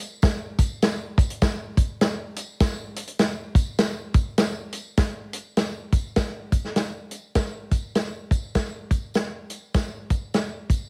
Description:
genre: soul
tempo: 101 BPM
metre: 4/4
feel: swing 59% on 8ths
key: none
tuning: none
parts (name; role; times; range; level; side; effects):
- warm soul drum kit; drums; 0.2-10.8 s; hi-hat, kick drum, snare drum; -24 LUFS; equal; none
- tambourine; percussion; 0.2-10.8 s; none; -44 LUFS; equal; none
room: light reverb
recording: heavily compressed radio sound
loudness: -25 LUFS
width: mono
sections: 0.0-5.0 A section; 5.0-7.4 B section; 7.4-10.9 C section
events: none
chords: none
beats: | 0.23 0.83 1.42 2.01 | 2.61 3.20 3.79 4.39 | 4.98 5.58 6.17 6.77 | 7.36 7.96 8.55 9.15 | 9.74 10.34

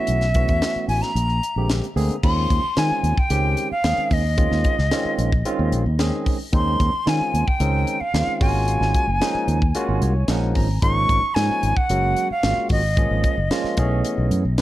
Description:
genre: electric jazz fusion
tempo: 112 BPM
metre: 4/4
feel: straight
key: unclear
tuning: A4 = 440 Hz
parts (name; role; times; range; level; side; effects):
- bright silver concert flute; melody; 0.0-14.3 s; Eb5 to Db6; -24 LUFS; equal; tape echo
- barky tine electric piano; accompaniment; 0.0-14.6 s; D3 to Bb5; -26 LUFS; right 2 dB; medium stereo tremolo
- fingered electric bass; bass; 0.1-14.6 s; Gb1 to Eb3; -21 LUFS; equal; none
- tight funk drum kit; drums; 0.1-14.6 s; crash cymbal, hi-hat, kick drum, snare drum; -23 LUFS; equal; none
room: light reverb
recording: dark, warm production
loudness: -18 LUFS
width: side -15 dB against mid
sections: 0.0-2.2 A section; 2.2-14.6 B section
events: tine electric piano fill 9.8-10.8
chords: 0.0 B9sus4; 1.2 Bb13; 2.2 Eb13sus4; 8.4 Ab13sus4; 13.8 B13sus4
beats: | 0.08 0.62 1.16 1.70 | 2.23 2.77 3.31 3.85 | 4.38 4.92 5.46 5.99 | 6.53 7.07 7.60 8.14 | 8.68 9.21 9.75 10.29 | 10.82 11.36 11.90 12.43 | 12.97 13.51 14.04 14.58

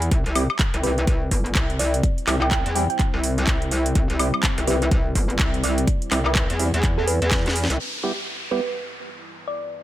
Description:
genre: bass house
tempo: 125 BPM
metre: 4/4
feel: swing 60% on 16ths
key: unclear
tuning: A4 = 440 Hz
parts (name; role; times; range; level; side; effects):
- metallic wobble bass; bass; 0.0-7.8 s; G1 to E2; -22 LUFS; equal; chorus, overdrive, sidechain pumping
- house drum kit; drums; 0.0-9.6 s; handclaps, hi-hat, snare drum, woodblock; -26 LUFS; equal; low-pass filter on hats, low-pass filter on perc, low-pass filter on snare, low-pass filter on room
- dark analog pad; sustained chords; 1.5-9.8 s; G3 to B4; -32 LUFS; left 1 dB; chorus, sidechain pumping
- electronic kick drum; drums; 0.1-7.4 s; none; -22 LUFS; equal; none
- percussive organ stab; stabs; 0.4-8.6 s; G3 to G4; -29 LUFS; right 3 dB; analog chorus, sidechain pumping, dub echo
- thumb-piano-like synth pluck; melody; 0.8-9.7 s; A4 to G5; -29 LUFS; right 1 dB; chorus, phaser, dub echo
- downlifter; sound effects; 7.8-9.8 s; none; -31 LUFS; equal; none
room: digital ambience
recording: none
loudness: -19 LUFS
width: side -14 dB against mid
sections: 0.0-7.8 A section; 7.8-9.8 B section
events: drum fill 7.3-7.8; filter sweep on analog synth pad 7.8-9.8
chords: 0.1 C; 7.8 Em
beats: | 0.12 0.59 1.07 1.55 | 2.04 2.52 3.00 3.48 | 3.96 4.43 4.92 5.39 | 5.88 6.36 6.83 7.32 | 7.79 8.28 8.76 9.23 | 9.71

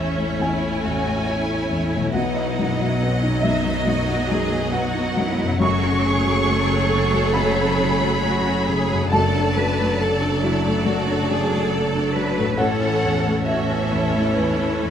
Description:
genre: cinematic, emotional film score for orchestra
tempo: 69 BPM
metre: 4/4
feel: rubato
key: unclear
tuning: A4 = 439 Hz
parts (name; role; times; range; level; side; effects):
- warm symphonic violin section; melody; 0.0-14.9 s; B4 to C#6; -28 LUFS; left 1 dB; none
- rich symphonic violin section; second line; 0.0-14.9 s; D#4 to D#5; -26 LUFS; equal; none
- felt-muted upright piano; accompaniment; 0.0-14.9 s; A1 to C#6; -24 LUFS; left 2 dB; none
- rich symphonic viola section; accompaniment; 0.0-14.9 s; E3 to C#4; -27 LUFS; equal; none
- concert harp; arpeggios; 0.0-14.9 s; F#2 to C#5; -28 LUFS; left 6 dB; none
- clear symphonic double bass section; bass; 0.0-14.9 s; F#1 to B1; -26 LUFS; right 4 dB; none
- rich symphonic cello section; bass; 0.0-14.9 s; C#4 to B4; -27 LUFS; right 2 dB; none
room: moderate scoring stage reverb, RT60 1.6 s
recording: none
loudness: -18 LUFS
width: side -8 dB against mid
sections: 0.0-14.9 A section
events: none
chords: 0.0 A; 2.1 B; 5.6 F#madd9; 9.1 D/F#; 12.6 A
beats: 0.40 1.27 | 2.14 3.00 3.86 4.73 | 5.61 6.48 7.35 8.23 | 9.11 9.98 10.84 11.71 | 12.58 13.46 14.36

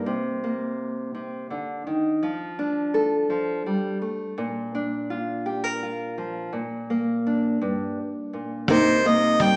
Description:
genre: acoustic folk-pop ballad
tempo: 56 BPM (dotted quarters)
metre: 6/8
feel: straight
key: unclear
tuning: A4 = 440 Hz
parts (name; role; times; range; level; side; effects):
- nylon-string guitar; accompaniment; 0.0-9.6 s; G2 to Bb4; -24 LUFS; equal; none
- bright harmonica; melody; 8.7-9.6 s; C5 to G5; -19 LUFS; equal; none
- hollow-body short-scale fingered electric bass; bass; 8.7-9.6 s; C2; -39 LUFS; equal; none
- soft brush drum kit; drums; 8.7-9.6 s; hi-hat, kick drum; -28 LUFS; equal; none
room: wet recital hall reverb, RT60 1.4 s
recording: recorded in a church or concert hall, small speaker sound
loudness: -23 LUFS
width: side -32 dB against mid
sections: 0.1-8.7 A section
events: none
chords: 0.1 Cm7; 2.2 F6; 4.4 Bb; 6.5 Gm/Bb; 8.7 Cm7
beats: | 0.07 1.14 | 2.22 3.29 | 4.37 5.45 | 6.52 7.60 | 8.68

